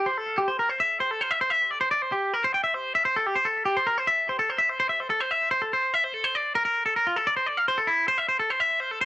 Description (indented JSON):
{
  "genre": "rock",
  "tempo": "146 BPM",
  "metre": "4/4",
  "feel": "straight",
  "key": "unclear",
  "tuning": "A4 = 440 Hz",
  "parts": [
    { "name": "twangy electric guitar", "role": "solo", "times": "0.0-9.1 s", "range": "E4 to G5", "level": "-22 LUFS", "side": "equal", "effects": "cassette tape, analog delay" }
  ],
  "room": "light reverb",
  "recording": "home recording on cassette",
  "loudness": "-22 LUFS",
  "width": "side -16 dB against mid",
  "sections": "0.0-4.8 A section; 4.8-9.1 B section",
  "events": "none",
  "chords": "none"
}